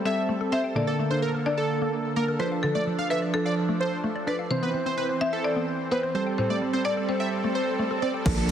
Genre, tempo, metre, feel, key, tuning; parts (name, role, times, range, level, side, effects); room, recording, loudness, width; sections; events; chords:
dance-pop; 128 BPM; 4/4; straight; A4 = 440 Hz
buzzing marimba with hard mallets; melody; 0.0-8.0 s; A4 to E5; -31 LUFS; left 3 dB; ping-pong delay
soft electric-piano-like synth keys; accompaniment; 0.0-8.5 s; D3 to C5; -30 LUFS; right 2 dB; chorus, sidechain pumping
soft supersaw; sustained chords; 0.0-8.5 s; D3 to C5; -31 LUFS; right 1 dB; sidechain pumping
mallet-like synth pluck; arpeggios; 0.0-8.2 s; A2 to A5; -32 LUFS; left 3 dB; chorus, sidechain pumping, ping-pong delay
plucky unison lead; melody; 0.1-8.5 s; A4 to F5; -31 LUFS; right 2 dB; sidechain pumping, ping-pong delay
swell and downlifter; sound effects; 6.8-8.5 s; -32 LUFS; right 2 dB
saturated sub bass; bass; 8.3-8.5 s; Bb1; -26 LUFS; equal; sidechain pumping
punchy analog drum machine; drums; 8.3-8.5 s; crash cymbal, hi-hat, kick drum; -25 LUFS; equal; overdrive
moderate plate reverb, RT60 1.9 s, digital ambience; heavily compressed radio sound, faint mains hum; -24 LUFS; side -9 dB against mid
0.0-8.3 A section
swell 6.8-8.3
0.0 Am7; 0.8 Bbmaj7; 2.4 Dm; 4.5 Cmaj7; 6.1 Am7